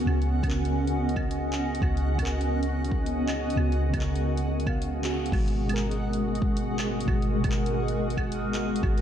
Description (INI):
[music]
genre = future garage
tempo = 137 BPM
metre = 4/4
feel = swing 66% on 16ths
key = G# minor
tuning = A4 = 440 Hz
[part]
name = muted felt-like synth keys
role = accompaniment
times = 0.0-9.0 s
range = B2 to E#5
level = -32 LUFS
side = right 3 dB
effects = chorus, sidechain pumping, analog delay
[part]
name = granular cloud pad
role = sustained chords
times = 0.0-9.0 s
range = G#3 to G#5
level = -30 LUFS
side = equal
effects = built-in reverb, vintage 12-bit sampler grit, sidechain pumping
[part]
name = soft 808-style bass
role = bass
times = 0.0-9.0 s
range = G#1 to C#2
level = -29 LUFS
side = equal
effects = tube saturation, sidechain pumping
[part]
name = backwards swelling texture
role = texture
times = 0.0-9.0 s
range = F#4 to F#5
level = -40 LUFS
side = left 1 dB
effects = built-in reverb
[part]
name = deep house drum kit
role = drums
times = 0.1-9.0 s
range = claves, crash cymbal, handclaps, hi-hat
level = -38 LUFS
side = right 1 dB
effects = vintage 12-bit sampler grit, studio reverb
[part]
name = electronic kick drum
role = drums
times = 0.4-8.9 s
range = none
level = -29 LUFS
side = equal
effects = vintage 12-bit sampler grit, studio reverb
[sound]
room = light reverb, digital ambience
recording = none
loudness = -24 LUFS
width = side -9 dB against mid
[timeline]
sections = 0.0-5.3 A section; 5.3-9.0 B section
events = filter sweep on synth keys 0.0-5.3; band accent 5.0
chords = 0.0 C#7sus4; 5.3 G#m7